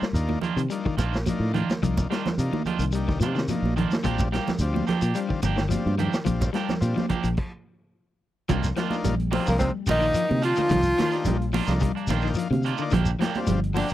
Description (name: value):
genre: afrobeat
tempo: 108 BPM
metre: 4/4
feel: straight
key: C minor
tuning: A4 = 440 Hz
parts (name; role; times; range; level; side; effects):
- electric guitar at the edge of break-up; arpeggios; 0.0-13.9 s; D3 to G3; -30 LUFS; left 8 dB; spring reverb, slapback echo
- electric guitar at the edge of break-up; stabs; 0.0-13.9 s; Eb3 to G4; -31 LUFS; right 8 dB; none
- fingered electric bass; bass; 0.0-13.9 s; G1 to C3; -26 LUFS; equal; none
- vintage drum kit; drums; 0.0-13.9 s; crash cymbal, hi-hat, kick drum, snare drum; -30 LUFS; equal; none
- shekere; percussion; 0.0-13.9 s; none; -31 LUFS; left 1 dB; none
- combo organ; accompaniment; 0.1-13.6 s; G3 to G5; -32 LUFS; left 4 dB; none
- congas; percussion; 0.2-13.9 s; none; -30 LUFS; right 5 dB; none
- breathy tenor saxophone; melody; 9.3-13.9 s; Bb3 to F4; -24 LUFS; equal; none
- breathy alto saxophone; second line; 9.3-13.9 s; Bb3 to F4; -35 LUFS; right 4 dB; none
- bright baritone saxophone; second line; 9.3-13.9 s; Bb2 to F3; -36 LUFS; left 4 dB; none
room: little or no reverb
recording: dry, close 1970s-style studio recording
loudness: -22 LUFS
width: side -13 dB against mid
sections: 0.0-8.5 A section; 8.5-13.9 B section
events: stop 7.4-8.5; transistor combo organ fill 11.8-12.9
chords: 0.0 Cm11; 4.0 Bb6; 8.5 Cm11; 12.9 Bb6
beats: 0.15 0.71 1.26 | 1.82 2.38 2.93 3.49 | 4.05 4.60 5.16 5.71 | 6.27 6.83 7.38 7.94 | 8.49 9.05 9.60 10.16 | 10.71 11.27 11.82 12.37 | 12.93 13.48